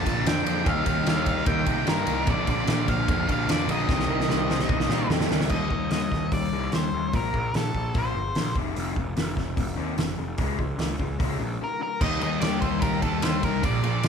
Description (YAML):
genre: indie rock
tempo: 148 BPM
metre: 4/4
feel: straight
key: unclear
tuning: A4 = 440 Hz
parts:
  - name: octave-fuzz lead guitar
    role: melody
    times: 0.0-8.5, 11.6-14.1 s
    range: A4 to A5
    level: -30 LUFS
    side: left 1 dB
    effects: distortion
  - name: raw garage guitar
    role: riff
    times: 0.0-14.1 s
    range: F2 to Eb4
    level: -30 LUFS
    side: left 7 dB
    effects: overdrive
  - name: thick fuzz guitar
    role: riff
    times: 0.0-5.5, 12.0-14.1 s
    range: Bb2 to G4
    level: -30 LUFS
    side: right 7 dB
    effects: distortion
  - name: fuzz picked electric bass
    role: bass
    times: 0.0-14.1 s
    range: F1 to C3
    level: -29 LUFS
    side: right 1 dB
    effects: overdrive
  - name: loose indie drum kit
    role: drums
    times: 0.1-14.1 s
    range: crash cymbal, hi-hat, kick drum, ride cymbal, snare drum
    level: -27 LUFS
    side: equal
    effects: none
  - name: overdriven tine electric piano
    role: second line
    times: 4.1-5.5 s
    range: A4 to C5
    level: -33 LUFS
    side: right 6 dB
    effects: none
room: light reverb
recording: band playing live in one room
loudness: -23 LUFS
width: side -6 dB against mid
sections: 0.0-5.5 A section; 5.5-12.0 B section; 12.0-14.1 C section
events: drum fill 3.9-5.5; break 11.6-12.0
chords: 0.0 Bb; 0.7 Ebadd9; 2.3 Bb; 3.9 Cm7; 5.5 Eb; 7.1 Bbsus2; 8.6 F5; 10.4 Db; 12.0 Eb